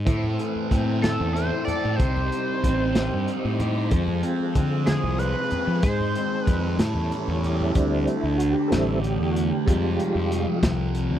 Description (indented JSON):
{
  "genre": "psychedelic rock",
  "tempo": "62 BPM (dotted quarters)",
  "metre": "6/8",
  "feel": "straight",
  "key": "A harmonic minor",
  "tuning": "A4 = 438 Hz",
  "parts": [
    { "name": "tonewheel organ", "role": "sustained chords", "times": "0.0-10.6 s", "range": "G3 to C5", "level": "-30 LUFS", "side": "right 3 dB", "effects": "slow rotary speaker, overdrive, chorus vibrato" },
    { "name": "fuzz fingered electric bass", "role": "bass", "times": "0.0-11.2 s", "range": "A1 to F3", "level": "-26 LUFS", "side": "equal", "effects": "overdrive" },
    { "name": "fuzz guitar", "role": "riff", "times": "0.1-11.2 s", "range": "F2 to A4", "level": "-26 LUFS", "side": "left 1 dB", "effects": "distortion, phaser" },
    { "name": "crunchy breakbeat drum kit", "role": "drums", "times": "0.1-11.1 s", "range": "hi-hat, kick drum, snare drum", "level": "-24 LUFS", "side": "equal", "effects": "none" },
    { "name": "congas", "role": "percussion", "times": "0.1-10.8 s", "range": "none", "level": "-33 LUFS", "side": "right 1 dB", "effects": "none" },
    { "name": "sync lead", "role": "melody", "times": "1.0-6.8 s", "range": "Ab4 to D5", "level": "-29 LUFS", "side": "left 1 dB", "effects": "chorus, tape echo" }
  ],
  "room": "little or no reverb",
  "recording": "dry, close 1970s-style studio recording",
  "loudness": "-21 LUFS",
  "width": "side -10 dB against mid",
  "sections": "0.0-7.8 A section; 7.8-11.2 B section",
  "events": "drum fill 7.3-7.8; tonewheel organ solo 7.8-11.2",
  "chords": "0.1 Am; 2.0 Cm; 3.9 Fm; 5.8 G#; 6.8 A7; 7.8 D7sus4; 9.7 Fmadd9",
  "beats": "| 0.06 1.03 | 1.99 2.96 | 3.92 4.88 | 5.84 6.80 | 7.76 8.71 | 9.67 10.63"
}